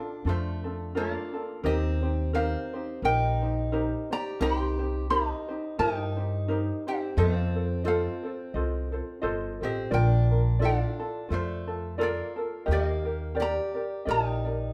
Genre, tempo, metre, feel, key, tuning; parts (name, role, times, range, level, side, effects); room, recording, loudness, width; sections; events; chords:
Hawaiian; 87 BPM; 4/4; swing 56% on 8ths; Bb major; A4 = 440 Hz
ukulele; melody; 0.0-14.7 s; F4 to C6; -33 LUFS; equal
picked steel-string acoustic guitar; second line; 0.0-14.7 s; A3 to G4; -39 LUFS; equal
ukulele; accompaniment; 0.0-14.7 s; D4 to Eb5; -34 LUFS; equal
upright bass; bass; 0.2-14.7 s; G1 to G2; -30 LUFS; equal
moderate large studio reverb, RT60 1.2 s; band playing live in one room; -28 LUFS; mono
0.0-14.7 A section
0.0 Bbmaj7; 1.6 Eb6; 4.4 Cm7; 7.2 F7; 9.9 Bbmaj7; 12.7 Ebmaj7